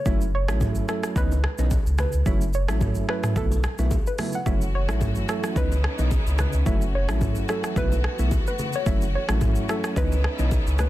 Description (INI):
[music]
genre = afrobeats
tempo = 109 BPM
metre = 4/4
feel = swing 55% on 16ths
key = F# dorian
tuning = A4 = 442 Hz
[part]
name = soft round pluck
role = melody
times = 0.0-10.9 s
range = A4 to F#5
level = -32 LUFS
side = right 1 dB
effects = chorus, digital delay
[part]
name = soft electric-piano-like synth keys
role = accompaniment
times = 0.1-10.5 s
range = E3 to E4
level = -30 LUFS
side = right 2 dB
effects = chorus
[part]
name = sub bass with octave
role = bass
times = 0.1-10.9 s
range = F#1 to C#2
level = -24 LUFS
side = equal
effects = none
[part]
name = afro-pop drum kit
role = drums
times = 0.1-10.9 s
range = hi-hat, kick drum, rim click, shaker, toms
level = -26 LUFS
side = equal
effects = overdrive
[part]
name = congas and bongos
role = percussion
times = 0.1-10.9 s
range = none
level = -35 LUFS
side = left 4 dB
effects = none
[part]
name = warm studio string section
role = sustained chords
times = 4.5-10.9 s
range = E3 to F#4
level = -33 LUFS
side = left 1 dB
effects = none
[sound]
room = little or no reverb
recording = dense, heavily limited modern master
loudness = -21 LUFS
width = side -15 dB against mid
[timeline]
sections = 0.0-10.9 A section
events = none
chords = 0.1 F#m7; 1.2 C#m9; 2.3 F#m7; 3.4 B7sus4; 4.5 F#m7; 5.6 C#m9; 6.7 F#m7; 7.8 B7sus4; 8.9 F#m7; 10.0 C#m9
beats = | 0.06 0.61 1.16 1.71 | 2.26 2.81 3.36 3.91 | 4.46 5.01 5.56 6.11 | 6.66 7.21 7.76 8.31 | 8.86 9.41 9.96 10.52